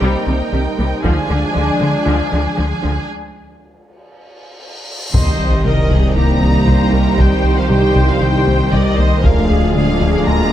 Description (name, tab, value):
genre	cinematic, hybrid orchestral and electronic film score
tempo	117 BPM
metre	4/4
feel	straight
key	C minor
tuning	A4 = 440 Hz
part	rich symphonic violin section	second line	0.0-10.5 s	D4 to Ab5	-25 LUFS	left 1 dB	none
part	rich symphonic viola section	accompaniment	0.0-10.5 s	F3 to D5	-24 LUFS	right 1 dB	low-pass filter
part	warm analog pad	sustained chords	0.0-10.5 s	D3 to D5	-21 LUFS	right 1 dB	lush chorus, low-pass filter
part	soft round pluck	arpeggios	0.0-10.4 s	C3 to D4	-25 LUFS	right 1 dB	none
part	rubbery square bass	riff	0.0-10.4 s	C2 to D3	-18 LUFS	left 1 dB	low-pass filter
part	rich symphonic cello section	bass	0.0-10.5 s	C2 to D3	-21 LUFS	right 1 dB	none
part	taiko ensemble	drums	1.0-2.0, 5.1-9.7 s	none	-18 LUFS	equal	none
part	cymbal swell and sub drop	sound effects	4.6-7.2 s	none	-23 LUFS	equal	none
part	warm symphonic violin section	melody	5.1-10.5 s	Eb5 to Bb5	-23 LUFS	left 2 dB	low-pass filter
part	mellow French horn section	sustained chords	5.1-10.5 s	Eb3 to Bb3	-23 LUFS	left 3 dB	low-pass filter
part	mellow trombone section	sustained chords	5.1-10.5 s	D3 to Ab3	-23 LUFS	right 3 dB	none
part	phased detuned saw bass	bass	5.1-10.5 s	D1 to C2	-21 LUFS	equal	phaser
part	rich symphonic double bass section	bass	5.2-10.5 s	C2 to D2	-23 LUFS	right 2 dB	none
room	light reverb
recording	close, detailed microphones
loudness	-12 LUFS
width	side -12 dB against mid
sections	0.0-5.1 A section; 5.1-10.5 B section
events	build-up 0.0-5.1; break 3.1-5.1; cymbal swell 4.6-5.1; impact 5.1-7.2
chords	0.0 Cm7; 1.0 Ddim; 3.1 N.C.; 5.1 Cm7; 9.2 Ddim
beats	0.01 0.53 | 1.04 1.55 2.06 2.58 | 3.09 3.60 4.12 4.63 | 5.14 5.65 6.17 6.68 | 7.19 7.71 8.22 8.73 | 9.24 9.76 10.27